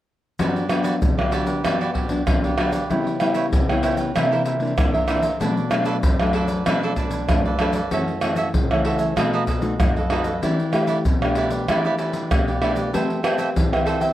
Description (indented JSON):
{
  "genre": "samba and choro",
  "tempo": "96 BPM",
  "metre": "4/4",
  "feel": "straight",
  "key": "G major",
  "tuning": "A4 = 435 Hz",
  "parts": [
    { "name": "cavaquinho", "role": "accompaniment", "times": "0.4-14.1 s", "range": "D4 to G5", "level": "-25 LUFS", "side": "right 3 dB", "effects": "none" },
    { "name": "nylon-string guitar", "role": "accompaniment", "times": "0.4-14.1 s", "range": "F#2 to B4", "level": "-24 LUFS", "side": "left 2 dB", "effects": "none" },
    { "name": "egg shaker, surdo, pandeiro and tamborim", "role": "percussion", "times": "0.4-14.1 s", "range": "none", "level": "-21 LUFS", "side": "equal", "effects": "none" }
  ],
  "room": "moderate studio reverb, RT60 0.5 s",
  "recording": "worn, warbling old tape, cassette tape, warbly pitch drift",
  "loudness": "-18 LUFS",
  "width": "side -13 dB against mid",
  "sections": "0.4-14.1 A section",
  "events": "none",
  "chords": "0.4 Gmaj7; 2.9 C#m7b5; 4.2 C9; 5.4 Bm7; 7.9 F#m7; 9.2 B7; 10.4 Em7; 12.9 Am9"
}